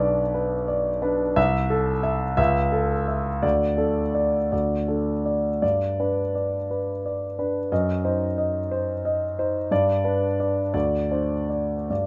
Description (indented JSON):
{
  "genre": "classical, romantic character piece for solo piano",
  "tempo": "49-61 BPM (dotted quarters)",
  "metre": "6/8",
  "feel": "rubato",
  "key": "G major",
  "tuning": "A4 = 439 Hz",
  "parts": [
    { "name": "warm concert grand piano", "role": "solo", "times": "0.0-12.1 s", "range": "B1 to E5", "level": "-24 LUFS", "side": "equal", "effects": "none" }
  ],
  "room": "moderate large studio reverb, RT60 0.9 s",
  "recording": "none",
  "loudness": "-24 LUFS",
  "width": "mono",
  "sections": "0.0-12.1 A section",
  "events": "none",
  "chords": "0.0 Bm; 1.4 Am/C; 2.4 A/C#; 3.4 D5; 5.6 G; 7.7 Cdim/Gb; 9.7 G; 10.7 Csus2/D"
}